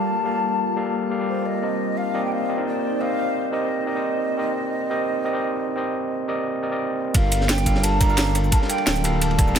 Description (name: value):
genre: liquid drum and bass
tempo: 174 BPM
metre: 4/4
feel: straight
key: unclear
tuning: A4 = 440 Hz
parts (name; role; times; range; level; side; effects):
- mellow hollow concert flute; melody; 0.0-9.6 s; C5 to Bb5; -27 LUFS; equal; ping-pong delay
- overdriven tine electric piano; accompaniment; 0.0-9.6 s; G3 to F5; -25 LUFS; equal; low-pass filter, tape echo
- glassy FM pad; sustained chords; 0.0-9.6 s; G3 to A5; -29 LUFS; left 1 dB; ensemble chorus, built-in reverb, sidechain pumping
- dark detuned saw bass; bass; 7.1-9.6 s; D1 to G1; -22 LUFS; right 1 dB; none
- crunchy breakbeat drum kit; drums; 7.1-9.6 s; ride cymbal, snare drum; -28 LUFS; equal; high-pass filter on cymbals, high-pass filter on snare, high-pass filter on room
- drum and bass drum kit; drums; 7.1-9.6 s; hi-hat, rim click, shaker, snare drum; -24 LUFS; right 1 dB; none
- electronic kick drum; drums; 7.1-9.5 s; none; -20 LUFS; equal; none
room: light reverb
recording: none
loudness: -20 LUFS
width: side -8 dB against mid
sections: 0.0-7.1 A section; 7.1-9.6 B section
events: filter sweep on tine electric piano 0.0-7.1; filter sweep on ambient pad 0.0-7.1; drop 7.1-9.6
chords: 0.0 Gm9; 1.6 Cm9; 7.1 Gm9